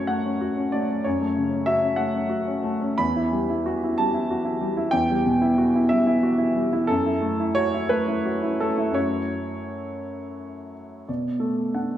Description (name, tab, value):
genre	neoclassical minimalist piano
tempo	55-65 BPM (dotted quarters)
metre	6/8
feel	rubato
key	unclear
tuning	A4 = 440 Hz
part	warm upright piano	solo	0.0-12.0 s	E2 to B5	-21 LUFS	equal	none
room	wet recital hall reverb, RT60 1.7 s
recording	recorded in a church or concert hall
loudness	-21 LUFS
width	side -11 dB against mid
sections	0.0-11.1 A section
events	none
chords	0.0 F#m; 3.0 Emadd9; 6.9 F#m7; 11.1 Bm7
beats	0.09 | 1.06 1.99 | 3.00 3.99 | 4.94 5.90 | 6.88 7.90 | 8.96 10.03 | 11.08